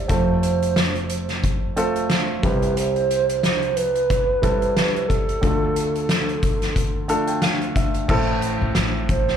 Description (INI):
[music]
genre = piano-driven pop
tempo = 90 BPM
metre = 4/4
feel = swing 56% on 16ths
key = C major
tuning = A4 = 444 Hz
[part]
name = hollow clarinet-like synth lead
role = melody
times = 0.0-9.4 s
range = A4 to C5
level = -23 LUFS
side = right 3 dB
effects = chorus, slapback echo, tape echo
[part]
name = warm grand piano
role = accompaniment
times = 0.0-9.4 s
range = F1 to A5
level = -23 LUFS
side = right 1 dB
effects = slapback echo
[part]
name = loose indie drum kit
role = drums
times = 0.1-9.4 s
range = crash cymbal, hi-hat, kick drum, snare drum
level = -23 LUFS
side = left 1 dB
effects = none
[part]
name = upright bass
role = bass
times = 8.1-9.4 s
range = A1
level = -24 LUFS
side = left 1 dB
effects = none
[sound]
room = light reverb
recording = live gig heard through the venue's PA, club reverb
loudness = -18 LUFS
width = side -8 dB against mid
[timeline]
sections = 0.0-8.1 A section; 8.1-9.4 B section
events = grand piano fill 6.8-8.1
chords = 0.1 F; 2.4 C; 5.4 Dm; 8.1 Am